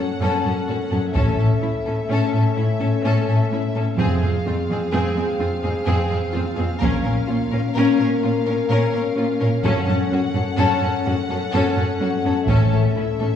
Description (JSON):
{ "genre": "cinematic, epic orchestral film score", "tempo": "85 BPM (dotted quarters)", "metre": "12/8", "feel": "straight", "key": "unclear", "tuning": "A4 = 440 Hz", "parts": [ { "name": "warm symphonic violin section", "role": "melody", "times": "0.0-13.4 s", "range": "E5 to Gb5", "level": "-32 LUFS", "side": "left 3 dB", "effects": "none" }, { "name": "bright symphonic violin section", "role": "second line", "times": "0.0-13.3 s", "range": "E4 to Bb4", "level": "-28 LUFS", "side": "left 4 dB", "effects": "none" }, { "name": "rich symphonic viola section", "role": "accompaniment", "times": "0.0-13.3 s", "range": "C4 to Db4", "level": "-25 LUFS", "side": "left 3 dB", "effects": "none" }, { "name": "dark French horn section", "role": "sustained chords", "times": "0.0-13.4 s", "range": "C4 to Bb4", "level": "-26 LUFS", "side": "left 3 dB", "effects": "none" }, { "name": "clear studio cello section", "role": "bass", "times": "0.0-13.3 s", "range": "F2 to Bb2", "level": "-22 LUFS", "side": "equal", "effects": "none" }, { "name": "rich symphonic double bass section", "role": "bass", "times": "1.1-12.7 s", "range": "F1 to Bb1", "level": "-24 LUFS", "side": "right 1 dB", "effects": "none" }, { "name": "solo taiko drums", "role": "drums", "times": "1.1-2.1, 6.8-7.7, 12.5-13.4 s", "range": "none", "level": "-26 LUFS", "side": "equal", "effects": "none" } ], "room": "wet scoring stage reverb, RT60 1.6 s", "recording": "heard from further back in the room, studio reverb", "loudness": "-18 LUFS", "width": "side -9 dB against mid", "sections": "0.0-13.4 A section", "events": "none", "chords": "0.0 Gbm; 1.2 A; 4.0 Fm; 6.8 Bbm; 9.6 Gbm; 12.5 A" }